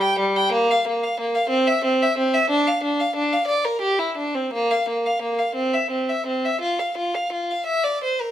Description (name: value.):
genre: classical, baroque-style suite movement for unaccompanied violin.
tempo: 52-62 BPM (dotted quarters).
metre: 6/8.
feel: rubato.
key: unclear.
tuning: A4 = 440 Hz.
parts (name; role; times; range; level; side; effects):
rich violin; solo; 0.0-8.3 s; G3 to G5; -19 LUFS; equal; none.
room: moderate stone room reverb, RT60 1.2 s.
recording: minimal, uncompressed stereo recording.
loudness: -19 LUFS.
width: side -11 dB against mid.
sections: 0.0-8.3 A section.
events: none.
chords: none.